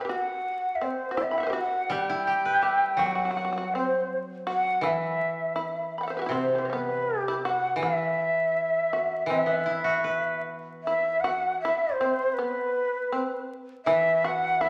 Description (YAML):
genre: japanese traditional, Japanese chamber music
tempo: 81 BPM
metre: 4/4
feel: rubato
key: E hirajoshi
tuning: A4 = 440 Hz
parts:
  - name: shamisen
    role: second line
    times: 0.0-14.7 s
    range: C3 to B5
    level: -34 LUFS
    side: equal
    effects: none
  - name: breathy shakuhachi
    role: melody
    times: 0.1-14.7 s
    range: B4 to G5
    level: -28 LUFS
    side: equal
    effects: none
  - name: koto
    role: accompaniment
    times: 1.9-14.7 s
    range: C3 to E5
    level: -34 LUFS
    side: equal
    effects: none
room: wet recital hall reverb, RT60 1.5 s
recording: vinyl crackle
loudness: -27 LUFS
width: mono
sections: 0.0-10.8 A section; 10.8-14.7 B section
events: none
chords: none